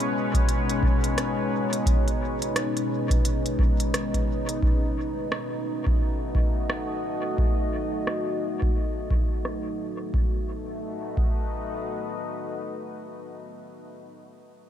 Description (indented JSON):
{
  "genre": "ambient dub",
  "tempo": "87 BPM",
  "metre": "4/4",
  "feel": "swing 60% on 16ths",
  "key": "B mixolydian",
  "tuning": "A4 = 440 Hz",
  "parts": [
    { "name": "deep dark ambient pad", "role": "sustained chords", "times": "0.0-13.6 s", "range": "B2 to D#5", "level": "-28 LUFS", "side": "left 1 dB", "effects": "chorus, built-in reverb" },
    { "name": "organic electronic drum kit", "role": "drums", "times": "0.0-9.6 s", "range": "hi-hat, rim click", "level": "-33 LUFS", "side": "right 1 dB", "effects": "low-pass filter on hats, low-pass filter on snare, dub echo" },
    { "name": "electronic kick drum", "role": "drums", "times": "0.3-11.4 s", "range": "none", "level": "-24 LUFS", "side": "equal", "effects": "none" }
  ],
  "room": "light reverb, digital ambience",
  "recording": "none",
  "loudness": "-24 LUFS",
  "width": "side -10 dB against mid",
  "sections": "0.0-4.6 A section; 4.6-10.1 B section; 10.1-12.9 C section",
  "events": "filter sweep on drum 4.6-10.1",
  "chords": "0.0 C#7(no3)/B; 4.6 B7"
}